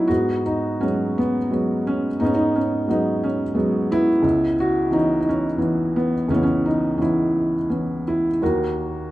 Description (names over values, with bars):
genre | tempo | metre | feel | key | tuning
classical, lyrical solo piano | 87 BPM | 3/4 | uneven beats, rubato | G# minor | A4 = 440 Hz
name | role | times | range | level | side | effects
felt-muted upright piano | solo | 0.0-9.1 s | C#2 to D#5 | -18 LUFS | equal | none
room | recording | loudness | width
moderate recital hall reverb, RT60 1.7 s | dark, warm production | -18 LUFS | side -16 dB against mid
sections
0.1-9.1 A section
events
none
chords
0.1 G#m7; 4.2 C#m7; 8.4 Bmaj7/D# (rootless)